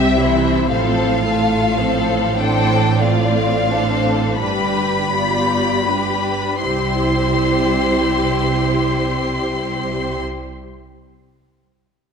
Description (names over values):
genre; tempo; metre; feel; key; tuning
classical, slow romantic movement for string orchestra; 25-40 BPM (dotted quarters); 6/8; rubato; C major; A4 = 439 Hz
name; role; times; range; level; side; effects
warm studio violin section; melody; 0.0-10.2 s; E5 to C6; -22 LUFS; left 4 dB; none
warm studio violin section; second line; 0.0-10.2 s; E4 to E5; -22 LUFS; left 2 dB; none
rich studio viola section; accompaniment; 0.0-10.2 s; E3 to G4; -21 LUFS; right 1 dB; none
dark studio double bass section; bass; 0.0-10.2 s; G1 to C2; -24 LUFS; right 4 dB; none
warm studio cello section; bass; 0.0-10.2 s; G2 to C3; -23 LUFS; right 2 dB; none
room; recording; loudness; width
wet concert hall reverb, RT60 1.8 s; none; -15 LUFS; side -6 dB against mid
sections
0.0-6.6 A section; 6.6-10.6 B section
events
slowing down 0.0-6.6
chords
0.0 C; 0.7 F/A; 2.4 Dm7/A; 4.4 G7; 6.6 C